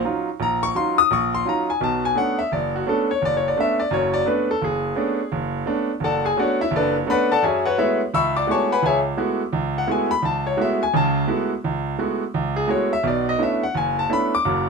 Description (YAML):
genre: jazz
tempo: 171 BPM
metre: 4/4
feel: swing 63% on 8ths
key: F# minor from 7.4 s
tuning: A4 = 440 Hz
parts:
  - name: bright grand piano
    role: solo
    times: 0.0-14.7 s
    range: F#1 to E6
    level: -19 LUFS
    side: equal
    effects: none
room: moderate studio reverb, RT60 0.6 s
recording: minimal, uncompressed stereo recording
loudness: -19 LUFS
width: side -4 dB against mid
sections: 0.0-7.4 A section; 7.4-14.7 A section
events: none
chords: 0.0 Ebm9; 1.8 Bm9; 7.4 F#m11; 13.0 Bm11